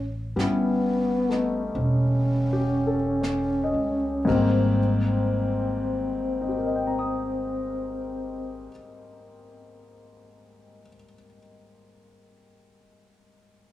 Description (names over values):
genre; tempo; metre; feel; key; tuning
jazz ballad; 37-45 BPM; 4/4; swing 68% on 8ths; Ab major; A4 = 439 Hz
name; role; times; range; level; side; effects
breathy trombone; melody; 0.0-8.7 s; Cb4 to Db4; -27 LUFS; left 1 dB; plate reverb
upright bass; bass; 0.0-8.7 s; E1 to C#2; -28 LUFS; right 1 dB; none
warm grand piano; accompaniment; 0.4-13.7 s; Ab2 to Eb6; -28 LUFS; left 3 dB; none
jazz brush drum kit; drums; 0.4-4.5 s; brushed snare drum, hi-hat, kick drum, ride cymbal, snare drum; -39 LUFS; right 2 dB; none
room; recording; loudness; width
moderate club ambience, RT60 0.5 s; small room reverb; -22 LUFS; side -14 dB against mid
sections
0.0-4.8 A section; 4.8-11.3 B section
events
slowing down 0.0-4.8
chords
0.0 A7; 4.0 Abmaj9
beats
0.37 1.75 3.21 | 4.78 6.40 8.01 9.63